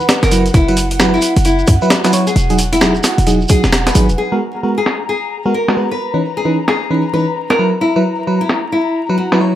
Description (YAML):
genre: UK garage, two-step garage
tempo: 132 BPM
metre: 4/4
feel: swing 62% on 16ths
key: G# minor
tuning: A4 = 440 Hz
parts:
  - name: nylon-string guitar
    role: melody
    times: 0.0-9.4 s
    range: E4 to B4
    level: -18 LUFS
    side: left 1 dB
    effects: none
  - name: airy breathy pad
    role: sustained chords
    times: 0.0-9.6 s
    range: F#5 to A#5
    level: -24 LUFS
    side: right 1 dB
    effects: chorus, sidechain pumping
  - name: shekere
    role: percussion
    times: 0.0-4.2 s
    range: none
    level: -24 LUFS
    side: right 3 dB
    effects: none
  - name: breakbeat sampler-style drum kit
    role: drums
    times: 0.1-9.4 s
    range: hi-hat, snare drum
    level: -17 LUFS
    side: equal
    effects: low-pass filter on hats, low-pass filter on snare, low-pass filter on room
  - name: short 808-style bass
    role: bass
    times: 0.2-4.2 s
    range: E1 to F#2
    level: -15 LUFS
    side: equal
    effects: none
  - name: FM electric piano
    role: stabs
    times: 0.3-9.5 s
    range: E3 to C#5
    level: -16 LUFS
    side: equal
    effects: chorus, phaser, low-pass filter, tape echo
  - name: electronic kick drum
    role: drums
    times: 0.5-3.6 s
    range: none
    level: -13 LUFS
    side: equal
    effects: none
room: light reverb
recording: vinyl crackle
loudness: -12 LUFS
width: side -12 dB against mid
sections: 0.0-4.2 A section; 4.2-9.6 B section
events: kick drops out 3.7-4.2; filter sweep on FM electric piano 4.2-9.6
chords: 0.3 F#7sus4; 2.4 Emaj9; 4.2 G#m9; 6.0 C#m9; 7.6 F#7sus4